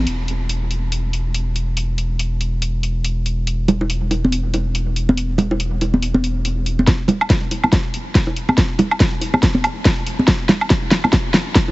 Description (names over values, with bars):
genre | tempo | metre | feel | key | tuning
deep dubstep | 141 BPM | 4/4 | swing 58% on 16ths, half-time | unclear | A4 = 440 Hz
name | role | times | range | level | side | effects
soft dub sub bass | bass | 0.0-6.9 s | E1 | -20 LUFS | equal | none
deep house drum kit | drums | 0.1-11.7 s | hi-hat, snare drum, woodblock | -19 LUFS | equal | none
congas and bongos | percussion | 3.7-11.7 s | none | -20 LUFS | right 1 dB | dub echo
electronic kick drum | drums | 6.9-11.7 s | none | -18 LUFS | equal | none
room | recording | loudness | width
light reverb | heavily compressed radio sound, vinyl crackle, nothing above 7.9 kHz | -16 LUFS | side -19 dB against mid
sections
0.1-6.9 A section; 6.9-11.7 B section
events
build-up 6.9-11.7; drum fill 6.9-11.7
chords
none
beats
| 0.07 0.49 0.92 1.34 | 1.77 2.19 2.62 3.05 | 3.47 3.90 4.32 4.75 | 5.17 5.60 6.03 6.45 | 6.88 7.30 7.73 8.15 | 8.58 9.00 9.43 9.86 | 10.28 10.71 11.13 11.56